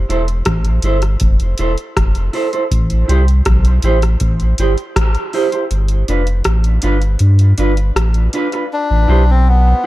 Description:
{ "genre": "dub reggae", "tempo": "80 BPM", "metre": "4/4", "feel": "straight", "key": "unclear", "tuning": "A4 = 441 Hz", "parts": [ { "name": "warm sub bass", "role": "bass", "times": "0.0-9.7 s", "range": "E1 to G2", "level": "-13 LUFS", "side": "equal", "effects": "none" }, { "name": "mellow electric guitar", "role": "accompaniment", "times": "0.1-9.9 s", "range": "D4 to C5", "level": "-20 LUFS", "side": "right 3 dB", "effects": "wide subtle chorus, dub echo" }, { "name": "booming analog drum machine", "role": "drums", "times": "0.1-8.7 s", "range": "hi-hat, kick drum, rim click", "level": "-18 LUFS", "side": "equal", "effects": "none" }, { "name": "melodica", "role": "melody", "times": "8.7-9.9 s", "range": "B3 to D4", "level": "-16 LUFS", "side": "left 3 dB", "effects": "dub echo" } ], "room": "little or no reverb", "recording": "dark, warm production", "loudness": "-12 LUFS", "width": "side -16 dB against mid", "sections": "0.0-8.7 A section; 8.7-9.9 B section", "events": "kick muted 5.7-8.7; part muted 8.7-9.9", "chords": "0.0 Fmaj7; 2.7 Am7; 5.7 G7; 8.7 N.C.", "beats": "0.47 1.22 1.97 | 2.72 3.47 4.22 4.97 | 5.72 6.46 7.21 7.96 | 8.71 9.46" }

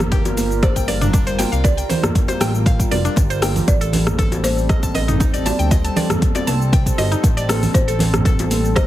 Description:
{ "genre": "afro house", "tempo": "118 BPM", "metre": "4/4", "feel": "straight", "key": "unclear", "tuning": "A4 = 440 Hz", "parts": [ { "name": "folk marimba with medium mallets", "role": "melody", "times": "0.0-8.9 s", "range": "C5 to D5", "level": "-28 LUFS", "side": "left 1 dB", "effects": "dub echo" }, { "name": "warm analog pad", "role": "sustained chords", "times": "0.0-8.9 s", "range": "G3 to Bb4", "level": "-26 LUFS", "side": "equal", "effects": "chorus, sidechain pumping" }, { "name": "smooth synth bass", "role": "bass", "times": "0.0-8.9 s", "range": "F1 to D2", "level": "-21 LUFS", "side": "equal", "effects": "sidechain pumping" }, { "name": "deep house drum kit", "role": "drums", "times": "0.0-8.9 s", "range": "hi-hat, rim click, shaker, toms", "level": "-24 LUFS", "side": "equal", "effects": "overdrive" }, { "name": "congas", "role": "percussion", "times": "0.0-8.9 s", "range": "none", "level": "-24 LUFS", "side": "right 2 dB", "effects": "none" }, { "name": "mallet-like synth pluck", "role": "arpeggios", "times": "0.1-8.8 s", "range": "D4 to A5", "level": "-26 LUFS", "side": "right 1 dB", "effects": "chorus, cassette tape, sidechain pumping, dub echo" }, { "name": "electronic kick drum", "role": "drums", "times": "0.1-8.9 s", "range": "none", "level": "-17 LUFS", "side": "equal", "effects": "overdrive" }, { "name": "bongos", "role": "percussion", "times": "0.1-8.9 s", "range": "none", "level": "-29 LUFS", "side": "left 4 dB", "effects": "none" } ], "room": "little or no reverb", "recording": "heavily compressed radio sound, multiband compression", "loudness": "-15 LUFS", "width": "side -14 dB against mid", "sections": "0.0-8.9 A section", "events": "none", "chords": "0.0 Gm7; 3.7 Am7b5", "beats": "0.12 0.63 1.14 | 1.64 2.15 2.66 3.17 | 3.68 4.19 4.70 5.20 | 5.71 6.22 6.73 7.24 | 7.75 8.25 8.76" }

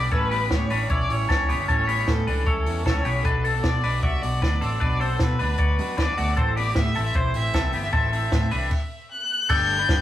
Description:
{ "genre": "jangly indie pop", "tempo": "154 BPM", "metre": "4/4", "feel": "straight", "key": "unclear", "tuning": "A4 = 442 Hz", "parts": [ { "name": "rich violin", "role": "melody", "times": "0.0-10.0 s", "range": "A4 to G6", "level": "-28 LUFS", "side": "left 1 dB", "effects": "ping-pong delay" }, { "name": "electric guitar through a small old amp", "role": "accompaniment", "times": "0.0-10.0 s", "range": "A2 to B4", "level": "-34 LUFS", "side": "right 2 dB", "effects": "none" }, { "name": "twelve-string electric guitar", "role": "arpeggios", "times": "0.0-10.0 s", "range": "A3 to D5", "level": "-26 LUFS", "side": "left 3 dB", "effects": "none" }, { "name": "vintage muted fingered electric bass", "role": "bass", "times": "0.0-10.0 s", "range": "G1 to B2", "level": "-25 LUFS", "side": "equal", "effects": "none" }, { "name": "compact cocktail drum kit", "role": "drums", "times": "0.1-10.0 s", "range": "crash cymbal, hi-hat, kick drum, ride cymbal, snare drum", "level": "-26 LUFS", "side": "equal", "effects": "none" } ], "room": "wet small room reverb, RT60 0.6 s", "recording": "rough rehearsal-room recording, vinyl crackle", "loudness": "-20 LUFS", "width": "side -12 dB against mid", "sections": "0.0-9.5 A section", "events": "stop 8.7-9.5", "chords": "0.1 A7; 3.2 Bm; 6.4 Am; 9.5 Gadd9", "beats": "| 0.12 0.51 0.90 1.29 | 1.69 2.08 2.47 2.86 | 3.25 3.64 4.03 4.42 | 4.81 5.20 5.59 5.99 | 6.38 6.77 7.16 7.55 | 7.94 8.33 8.72 9.11 | 9.50 9.89" }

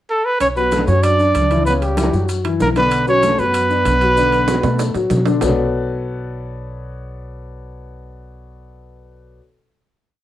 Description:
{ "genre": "Afro-Cuban jazz", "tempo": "192 BPM", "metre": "4/4", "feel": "straight", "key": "B minor", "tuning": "A4 = 441 Hz", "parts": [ { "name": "warm trumpet", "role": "melody", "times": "0.1-5.1 s", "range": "G4 to D5", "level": "-16 LUFS", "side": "right 1 dB", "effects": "cassette tape" }, { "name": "mellow trombone", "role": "second line", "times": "0.4-5.1 s", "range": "G3 to D4", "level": "-24 LUFS", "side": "right 6 dB", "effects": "cassette tape" }, { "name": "upright bass", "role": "bass", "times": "0.4-9.4 s", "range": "B1 to B2", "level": "-21 LUFS", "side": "equal", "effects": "none" }, { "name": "congas", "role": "percussion", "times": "0.4-5.5 s", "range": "none", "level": "-25 LUFS", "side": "equal", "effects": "none" }, { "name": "maracas", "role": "percussion", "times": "0.4-5.5 s", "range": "none", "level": "-36 LUFS", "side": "left 6 dB", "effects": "none" }, { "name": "timbales", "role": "percussion", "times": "0.4-5.5 s", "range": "none", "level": "-26 LUFS", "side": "right 7 dB", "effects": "none" }, { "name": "warm grand piano", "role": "accompaniment", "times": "0.6-9.4 s", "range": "C#3 to D5", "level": "-22 LUFS", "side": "left 5 dB", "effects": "cassette tape" } ], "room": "moderate studio reverb, RT60 0.5 s", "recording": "home recording on cassette", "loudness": "-14 LUFS", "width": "side -13 dB against mid", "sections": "0.0-0.4 pickup bar; 0.4-5.4 A section; 5.4-7.9 final chord", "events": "drum fill 4.5-5.4", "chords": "0.4 Bm11; 1.7 C#dim; 2.3 Bmadd11; 2.9 Bm9", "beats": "0.10 | 0.41 0.72 1.04 1.35 | 1.66 1.98 2.29 2.60 | 2.92 3.23 3.54 3.86 | 4.17 4.48 4.79 5.11 | 5.42 5.73 6.05 6.36 | 6.67 6.99 7.30 7.61" }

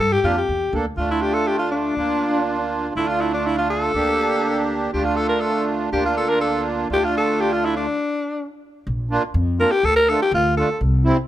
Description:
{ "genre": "klezmer", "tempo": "122 BPM", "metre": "2/4", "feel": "straight", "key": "D minor", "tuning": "A4 = 441 Hz", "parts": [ { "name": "raspy alto saxophone", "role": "melody", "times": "0.0-10.8 s", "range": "D4 to Bb4", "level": "-20 LUFS", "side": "left 1 dB", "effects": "plate reverb" }, { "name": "upright bass", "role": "bass", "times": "0.0-11.1 s", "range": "Bb1 to G2", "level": "-26 LUFS", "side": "equal", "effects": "none" }, { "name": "accordion", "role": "accompaniment", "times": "0.2-11.2 s", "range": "G3 to A4", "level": "-22 LUFS", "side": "right 2 dB", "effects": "light tremolo tuning" } ], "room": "moderate small room reverb, RT60 0.5 s", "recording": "none", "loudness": "-18 LUFS", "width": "side -13 dB against mid", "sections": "1.0-8.9 A section; 8.9-11.3 B section", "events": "stop 7.9-8.9", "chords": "0.0 Gm; 1.0 Dm; 2.0 Bb/D; 3.0 Dm; 3.9 Gm/D; 4.9 Dm; 5.9 Bb/D; 6.9 Dm; 7.9 N.C.; 8.9 Bb; 9.8 Dm", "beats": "0.48 | 0.98 1.47 | 1.97 2.46 | 2.95 3.45 | 3.94 4.44 | 4.93 5.42 | 5.92 6.41 | 6.90 7.39 | 7.88 8.38 | 8.86 9.35 | 9.84 10.32 | 10.81" }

